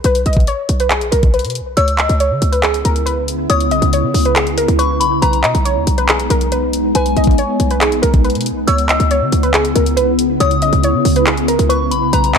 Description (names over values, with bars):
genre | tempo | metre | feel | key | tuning
hip hop, trap | 139 BPM | 4/4 | half-time | C# dorian | A4 = 445 Hz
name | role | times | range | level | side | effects
short 808-style bass | bass | 0.0-12.4 s | A#1 to C#3 | -17 LUFS | equal | none
trap drum kit | drums | 0.0-12.4 s | handclaps, hi-hat, kick drum | -18 LUFS | equal | none
warbly dusty pluck | melody | 0.1-12.4 s | G#4 to D#5 | -18 LUFS | equal | chorus, tape echo
soft synth bell | second line | 1.8-12.4 s | G#5 to E6 | -20 LUFS | left 4 dB | chorus, tape echo
ethereal airy pad | sustained chords | 2.8-12.4 s | C#3 to E4 | -18 LUFS | equal | ensemble chorus, built-in reverb
room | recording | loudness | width
light reverb | dark, warm production | -12 LUFS | side -6 dB against mid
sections
0.0-1.8 A section; 1.8-12.4 B section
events
none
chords
0.0 N.C.; 1.8 C#m7; 5.2 B6; 8.7 C#m7